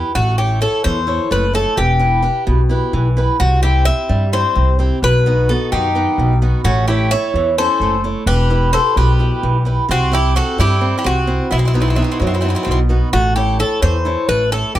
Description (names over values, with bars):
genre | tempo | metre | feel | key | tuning
greek folk, Greek bouzouki band | 259 BPM (eighths) | 7/8 | straight | unclear | A4 = 438 Hz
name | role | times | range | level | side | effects
picked swing-style acoustic guitar | accompaniment | 0.0-14.8 s | B2 to F#5 | -21 LUFS | right 2 dB | none
Greek bouzouki | melody | 0.2-14.8 s | E4 to E5 | -18 LUFS | left 2 dB | none
upright bass | bass | 0.2-14.8 s | E1 to G2 | -16 LUFS | equal | none
Greek bouzouki | second line | 5.7-12.8 s | B3 to C#5 | -22 LUFS | right 4 dB | none
room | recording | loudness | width
light reverb | none | -13 LUFS | side -13 dB against mid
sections
0.2-13.1 A section; 13.1-14.8 A section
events
none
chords
0.2 A; 1.8 Em; 3.4 C; 5.0 B; 6.6 A; 8.3 Em; 9.9 C; 11.5 B; 13.1 A